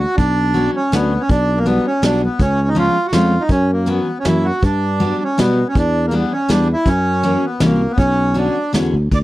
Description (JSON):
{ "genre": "musette waltz", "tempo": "161 BPM", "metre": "3/4", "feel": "swing 53% on 8ths", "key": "B harmonic minor", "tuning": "A4 = 440 Hz", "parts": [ { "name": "accordion", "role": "melody", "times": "0.0-9.2 s", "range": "A#3 to D5", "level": "-18 LUFS", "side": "right 1 dB", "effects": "none" }, { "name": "sustaining fretless electric bass", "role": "bass", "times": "0.0-9.2 s", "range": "B1 to B2", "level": "-18 LUFS", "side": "equal", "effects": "none" }, { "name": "vintage brush drum kit", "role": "drums", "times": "0.2-9.2 s", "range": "hi-hat, kick drum, ride cymbal, snare drum", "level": "-18 LUFS", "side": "equal", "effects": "none" }, { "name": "picked steel-string acoustic guitar", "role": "accompaniment", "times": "0.5-8.9 s", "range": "D3 to D4", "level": "-19 LUFS", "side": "left 1 dB", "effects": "none" } ], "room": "small room ambience", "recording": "dry, close 1970s-style studio recording", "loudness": "-14 LUFS", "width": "side -17 dB against mid", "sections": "0.2-9.1 A section", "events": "none", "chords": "0.2 Bmadd9; 1.3 Gmaj7/B; 2.4 C#7; 3.5 F#7sus4; 4.3 F#7; 4.6 Gmaj7; 5.8 Em7; 6.9 F#7; 8.0 Bmadd9", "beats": "| 0.18 0.56 0.93 | 1.30 1.67 2.03 | 2.40 2.77 3.13 | 3.51 3.88 4.25 | 4.63 5.01 5.38 | 5.75 6.12 6.49 | 6.86 7.23 7.61 | 7.98 8.36 8.74 | 9.12" }